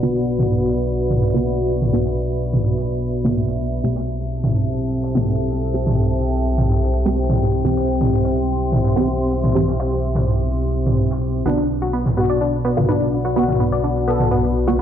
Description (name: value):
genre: melodic techno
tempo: 126 BPM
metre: 4/4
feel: straight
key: B phrygian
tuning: A4 = 440 Hz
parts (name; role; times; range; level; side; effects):
- dark analog pad; sustained chords; 0.0-14.8 s; F#4 to C6; -26 LUFS; left 1 dB; chorus
- filtered dub chord stab; stabs; 0.0-14.8 s; D3 to G4; -24 LUFS; right 2 dB; phaser, tape echo
- fat analog bass; bass; 0.0-14.8 s; B1; -22 LUFS; equal; none
- soft brush drum kit; drums; 0.0-14.8 s; hi-hat, snare drum; -42 LUFS; equal; high-pass filter on hats, low-pass filter on hats, high-pass filter on snare, low-pass filter on snare, high-pass filter on room, low-pass filter on room
- warbly tape-like pad; texture; 0.0-14.8 s; B3 to G5; -25 LUFS; left 2 dB; chorus, built-in reverb
- electronic toms; drums; 0.4-14.3 s; none; -21 LUFS; right 1 dB; low-pass filter on hats, low-pass filter on perc, low-pass filter on toms, low-pass filter on room
- analog synth brass; melody; 11.5-14.8 s; D4 to A4; -22 LUFS; left 2 dB; chorus, vintage 12-bit sampler grit, ping-pong delay
- analog pluck; arpeggios; 11.5-14.8 s; B3 to D5; -23 LUFS; left 1 dB; chorus, tape echo
room: light reverb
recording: played on a big sound system in a bare room, large studio reverb, low-pass filter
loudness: -17 LUFS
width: side -9 dB against mid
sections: 0.0-14.8 A section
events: filter sweep on synth stab 0.0-14.8; filter sweep 0.0-14.8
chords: 0.0 Bm; 3.8 Am7/B; 11.5 Bm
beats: | 0.03 0.50 0.98 1.46 | 1.93 2.41 2.88 3.36 | 3.84 4.31 4.79 5.27 | 5.74 6.22 6.70 7.17 | 7.65 8.12 8.60 9.08 | 9.55 10.03 10.50 10.98 | 11.46 11.93 12.41 12.88 | 13.36 13.84 14.31 14.79